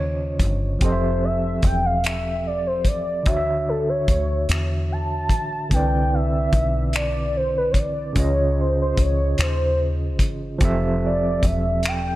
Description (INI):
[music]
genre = slow six-eight R&B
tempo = 49 BPM (dotted quarters)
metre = 6/8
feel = straight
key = unclear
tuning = A4 = 440 Hz
[part]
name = overdriven tine electric piano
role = accompaniment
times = 0.0-12.2 s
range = Db3 to E5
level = -26 LUFS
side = right 2 dB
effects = fast tremolo
[part]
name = deep dub fingered electric bass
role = bass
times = 0.0-12.2 s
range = E1 to E2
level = -24 LUFS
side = equal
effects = none
[part]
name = warm soul drum kit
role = drums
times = 0.4-12.0 s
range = finger snaps, hi-hat, kick drum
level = -23 LUFS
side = equal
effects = none
[part]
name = warm velvety synth lead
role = melody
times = 0.8-12.2 s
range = A4 to A5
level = -24 LUFS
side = equal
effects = chorus
[sound]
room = studio reverb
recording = none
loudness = -19 LUFS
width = side -16 dB against mid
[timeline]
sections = 0.0-12.2 A section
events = tine electric piano fill 0.0-0.8; soft synth lead solo 0.0-12.2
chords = 0.0 Dbmaj9; 0.8 Fmaj9; 3.3 Dmaj9; 5.7 Cmaj9; 8.2 Dbmaj9; 10.6 Fmaj9